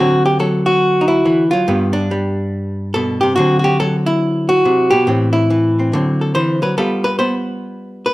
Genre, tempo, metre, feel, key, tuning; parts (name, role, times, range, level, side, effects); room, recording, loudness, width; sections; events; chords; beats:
solo jazz; 141 BPM; 4/4; swing 64% on 8ths; D mixolydian; A4 = 440 Hz
archtop guitar, miked and amplified; solo; 0.0-8.1 s; G2 to C5; -13 LUFS; equal
moderate large studio reverb, RT60 1.1 s; -13 LUFS; side -18 dB against mid
0.0-8.1 A section
0.0 D7; 1.7 G; 3.4 D7; 5.1 Am; 5.9 D7; 6.8 G7
0.40 0.82 1.25 | 1.67 2.10 2.52 2.95 | 3.37 3.80 4.22 4.65 | 5.07 5.50 5.92 6.35 | 6.77 7.20 7.62 8.05